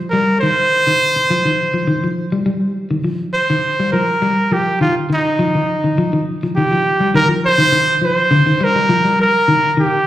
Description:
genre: afrobeat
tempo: 103 BPM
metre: 4/4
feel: straight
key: C minor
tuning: A4 = 438 Hz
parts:
  - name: clean electric guitar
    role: arpeggios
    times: 0.0-10.0 s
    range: D3 to G3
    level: -17 LUFS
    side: left 1 dB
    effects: slapback echo
  - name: bright trumpet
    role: melody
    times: 0.1-10.1 s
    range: Eb4 to C5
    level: -15 LUFS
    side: right 1 dB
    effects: slapback echo
room: moderate plate reverb, RT60 2.7 s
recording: live gig heard through the venue's PA, club reverb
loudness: -13 LUFS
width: side -13 dB against mid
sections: 0.0-7.1 A section; 7.1-10.1 B section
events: none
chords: 0.0 Cm; 7.1 Cm7

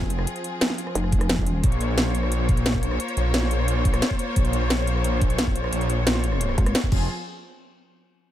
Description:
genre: dark technical drum and bass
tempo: 176 BPM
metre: 4/4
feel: straight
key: unclear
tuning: A4 = 445 Hz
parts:
  - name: rich symphonic string section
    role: sustained chords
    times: 0.0-7.1 s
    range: F3 to Db5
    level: -29 LUFS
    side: left 2 dB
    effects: sidechain pumping
  - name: wide detuned saw bass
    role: bass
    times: 0.0-7.1 s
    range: F1 to Bb1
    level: -23 LUFS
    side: equal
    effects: chorus, tube saturation, sidechain pumping
  - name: electronic kick drum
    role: drums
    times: 0.0-7.0 s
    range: none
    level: -23 LUFS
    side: equal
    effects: none
  - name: drum and bass drum kit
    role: drums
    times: 0.1-7.0 s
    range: crash cymbal, hi-hat, rim click, snare drum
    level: -26 LUFS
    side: equal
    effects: none
  - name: pulsing pluck wobble bass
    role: bass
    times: 1.0-1.6, 6.6-6.7 s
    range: F1 to Ab1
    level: -24 LUFS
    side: equal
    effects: chorus
room: little or no reverb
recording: none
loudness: -20 LUFS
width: side -12 dB against mid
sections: 0.0-7.1 A section; 7.1-8.3 B section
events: drop 0.0-7.1; band accent 6.7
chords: 0.0 Fm; 1.6 Bbm; 6.9 Fm; 7.1 N.C.

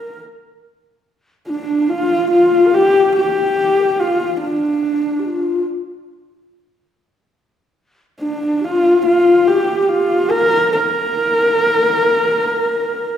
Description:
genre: mongolian traditional, Mongolian folk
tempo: 71 BPM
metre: 4/4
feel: straight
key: Bb gong mode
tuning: A4 = 440 Hz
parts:
  - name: dark horsehead fiddle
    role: melody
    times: 0.0-13.2 s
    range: D4 to Bb4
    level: -15 LUFS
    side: equal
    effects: none
  - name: breathy mellow low xiao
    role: second line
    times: 0.0-13.2 s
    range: D4 to C5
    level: -18 LUFS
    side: left 1 dB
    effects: none
room: wet recital hall reverb, RT60 1.4 s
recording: recorded in a church or concert hall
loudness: -13 LUFS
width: side -9 dB against mid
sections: 0.0-1.0 A section; 1.0-13.2 B section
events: none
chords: none

